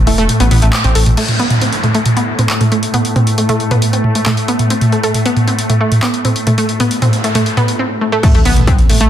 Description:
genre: driving peak-time techno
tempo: 136 BPM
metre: 4/4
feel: straight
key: unclear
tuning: A4 = 440 Hz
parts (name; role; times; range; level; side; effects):
- dark detuned saw bass; bass; 0.0-1.2, 8.3-9.1 s; E1 to A1; -13 LUFS; equal; sidechain pumping
- swarming drone; drone; 0.0-7.8 s; A2 to A3; -20 LUFS; equal; built-in reverb, sidechain pumping
- analog pluck; riff; 0.1-9.1 s; A3 to A4; -17 LUFS; equal; chorus, sidechain pumping, ping-pong delay
- techno drum kit; drums; 0.1-9.1 s; crash cymbal, handclaps, hi-hat, toms; -14 LUFS; right 1 dB; overdrive, sidechain pumping on hats, sidechain pumping on toms, sidechain pumping on cymbals
- downlifter, noise sweep and impact; sound effects; 1.2-9.1 s; none; -21 LUFS; equal; none
- electronic kick drum; drums; 8.2-8.8 s; none; -11 LUFS; equal; overdrive
room: light reverb, digital ambience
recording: dense, heavily limited modern master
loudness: -11 LUFS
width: side -10 dB against mid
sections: 0.0-1.2 A section; 1.2-8.2 B section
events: drop 0.0-1.2; kick drops out 0.3-1.2; band accent 0.7; filter sweep on synth arpeggio sound 1.2-8.2; noise sweep 6.8-8.2; break 7.8-8.2; impact 8.2-9.1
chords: 0.0 A5; 1.2 Asus2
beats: 0.29 0.73 | 1.17 1.61 2.06 2.50 | 2.94 3.38 3.82 4.26 | 4.70 5.14 5.58 6.03 | 6.47 6.91 7.35 7.79 | 8.23 8.67

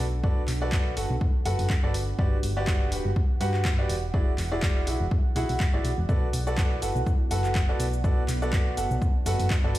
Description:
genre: piano house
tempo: 123 BPM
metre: 4/4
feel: swing 55% on 16ths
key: B minor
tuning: A4 = 440 Hz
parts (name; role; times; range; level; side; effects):
- clear upright piano; riff; 0.0-9.7 s; E4 to F#5; -31 LUFS; equal; sidechain pumping, dub echo
- solid FM bass; bass; 0.0-9.8 s; D1 to G2; -28 LUFS; equal; sidechain pumping
- deep dark ambient pad; texture; 0.0-9.8 s; B3 to F#5; -38 LUFS; right 2 dB; chorus, built-in reverb, sidechain pumping
- electronic kick drum; drums; 0.2-9.6 s; none; -25 LUFS; equal; overdrive
- punchy analog drum machine; drums; 0.5-9.8 s; cabasa, handclaps, hi-hat; -34 LUFS; equal; overdrive
room: light reverb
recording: played on a big sound system in a bare room, stone room reverb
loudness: -23 LUFS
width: side -15 dB against mid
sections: 0.0-9.8 A section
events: none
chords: 0.0 Bm7; 1.9 Gmaj7; 4.1 E9; 6.1 Bm7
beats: | 0.24 0.72 1.21 1.70 | 2.19 2.67 3.16 3.65 | 4.14 4.63 5.11 5.60 | 6.09 6.58 7.07 7.55 | 8.04 8.53 9.02 9.50

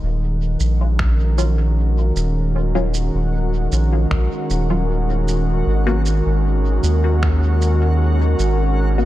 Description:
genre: ambient dub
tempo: 77 BPM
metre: 4/4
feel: straight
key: unclear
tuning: A4 = 437 Hz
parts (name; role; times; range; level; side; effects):
- airy breathy pad; sustained chords; 0.0-9.1 s; D#3 to A#4; -22 LUFS; right 1 dB; chorus
- soft dub sub bass; bass; 0.0-9.1 s; D#1 to D#2; -17 LUFS; equal; none
- backwards swelling texture; texture; 0.8-9.1 s; F#4 to F#5; -32 LUFS; left 2 dB; built-in reverb
- electronic shaker and finger snaps; drums; 0.6-8.6 s; none; -30 LUFS; right 2 dB; studio ambience, dub echo
- electronic kick drum; drums; 1.0-7.4 s; none; -24 LUFS; equal; none
- filtered dub chord stab; stabs; 1.4-9.1 s; F#3 to F#4; -27 LUFS; left 2 dB; phaser, dub echo
room: digital ambience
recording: none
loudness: -16 LUFS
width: side -15 dB against mid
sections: 0.0-9.1 A section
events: none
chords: 0.0 D#m7; 5.7 G#7sus2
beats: 0.21 0.99 1.77 | 2.55 3.33 4.11 4.89 | 5.67 6.45 7.22 8.00 | 8.78

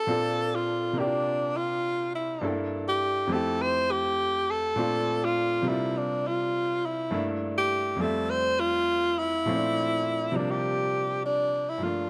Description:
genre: soul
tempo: 102 BPM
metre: 4/4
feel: straight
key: unclear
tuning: A4 = 439 Hz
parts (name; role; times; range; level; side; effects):
- breathy tenor saxophone; melody; 0.0-12.1 s; D4 to C5; -29 LUFS; equal; none
- clear baby grand piano; accompaniment; 0.0-12.1 s; F2 to E5; -33 LUFS; equal; none
room: light reverb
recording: none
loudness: -27 LUFS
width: mono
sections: 0.0-11.8 A section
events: none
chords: 0.1 Bbmaj9; 1.0 C9sus4; 2.4 Gm69; 3.3 Fmaj7; 4.8 Bbmaj9; 5.7 C9sus4; 7.1 Gm69; 8.0 Fmaj7; 9.5 Bbmaj9; 10.3 C9sus4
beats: | 0.08 0.67 1.26 1.84 | 2.43 3.02 3.60 4.19 | 4.78 5.36 5.95 6.54 | 7.12 7.71 8.29 8.88 | 9.47 10.06 10.64 11.23 | 11.82

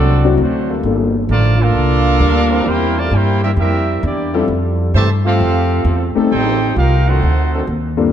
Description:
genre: jazz, big band swing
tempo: 132 BPM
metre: 4/4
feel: swing 66% on 8ths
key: F major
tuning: A4 = 443 Hz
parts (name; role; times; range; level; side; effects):
- clear trumpet section; melody; 0.0-7.7 s; A3 to A5; -20 LUFS; right 1 dB; none
- warm trombone section; second line; 0.0-7.7 s; C3 to G4; -20 LUFS; right 3 dB; none
- upright bass; bass; 0.0-8.1 s; G1 to G2; -15 LUFS; equal; none
- warm concert grand piano; accompaniment; 0.2-8.1 s; G2 to Bb4; -18 LUFS; left 5 dB; none
- warm trombone section; sustained chords; 0.7-7.6 s; Eb3 to Bb4; -25 LUFS; left 1 dB; none
room: moderate concert hall reverb, RT60 2.0 s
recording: dark, warm production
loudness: -12 LUFS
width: side -9 dB against mid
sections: 0.0-8.1 A section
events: none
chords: 0.0 D7; 0.8 Gm9; 2.7 C7; 4.5 Fmaj9; 6.3 Am7b5; 7.2 D7b9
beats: 0.39 | 0.84 1.30 1.75 2.21 | 2.67 3.12 3.58 4.03 | 4.49 4.95 5.40 5.86 | 6.31 6.77 7.22 7.68

